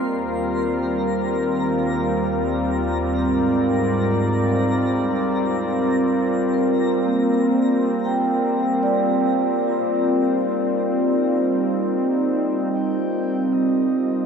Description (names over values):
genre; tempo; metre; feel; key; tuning
ambient; free time; none; none; unclear; A4 = 439 Hz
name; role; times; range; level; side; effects
warm analog pad; sustained chords; 0.0-14.3 s; Eb2 to D5; -19 LUFS; equal; chorus
vibraphone with medium mallets; arpeggios; 0.0-13.0 s; Bb3 to G5; -25 LUFS; equal; diffuse ambient delay
twinkling granular texture; texture; 0.0-12.7 s; Bb5 to C6; -36 LUFS; left 2 dB; built-in reverb
breathy flute-like synth lead; melody; 12.7-14.3 s; Eb5 to G5; -37 LUFS; left 1 dB; chorus
room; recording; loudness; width
wet cathedral reverb, RT60 6.0 s; dark, warm production; -18 LUFS; side -6 dB against mid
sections
0.0-12.7 A section; 12.7-14.3 B section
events
fade-in on vibraphone 0.0-12.7; fade-out on synth texture 0.0-12.7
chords
0.1 Ebadd9; 3.2 Ab; 6.4 Bb; 9.6 Cm; 12.7 Ebadd9